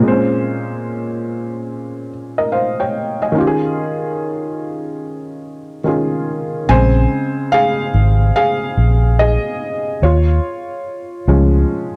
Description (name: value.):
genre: hip hop.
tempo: 72 BPM.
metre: 4/4.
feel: swing 64% on 16ths.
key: Bb minor.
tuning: A4 = 440 Hz.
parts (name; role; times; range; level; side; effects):
felt-muted upright piano; accompaniment; 0.0-12.0 s; Bb2 to Ab5; -20 LUFS; equal; cassette tape, low-pass filter, plate reverb.
vintage muted fingered electric bass; bass; 6.7-11.6 s; Ab1 to Eb2; -15 LUFS; equal; none.
room: moderate small room reverb, RT60 0.5 s.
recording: dark, warm production.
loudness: -17 LUFS.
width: mono.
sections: 0.0-6.7 A section; 6.7-12.0 B section.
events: filter sweep on felt piano 0.0-6.7; felt piano solo 6.7-12.0.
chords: 0.0 Bbm9; 3.4 Eb9sus4; 6.7 Bbm9; 10.0 Eb9sus4.